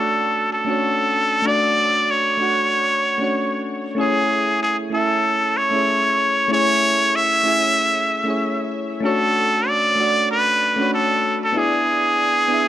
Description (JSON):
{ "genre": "chillout", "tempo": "95 BPM", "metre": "4/4", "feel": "swing 55% on 16ths", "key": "A major", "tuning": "A4 = 440 Hz", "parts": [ { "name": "trumpet with straight mute", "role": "melody", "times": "0.0-12.7 s", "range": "G#4 to E5", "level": "-17 LUFS", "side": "equal", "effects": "tape echo" }, { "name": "soft electric-piano-like synth keys", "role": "accompaniment", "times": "0.0-12.7 s", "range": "A3 to G#5", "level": "-22 LUFS", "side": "moving between left 3 dB and right 5 dB", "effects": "chorus, auto-pan" } ], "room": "light reverb, studio reverb", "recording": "dry, gritty hardware recording", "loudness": "-16 LUFS", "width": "side -12 dB against mid", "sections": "0.0-12.7 A section", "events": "none", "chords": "0.0 Dmaj7; 4.0 Amaj7; 9.0 Dmaj7; 11.6 E7" }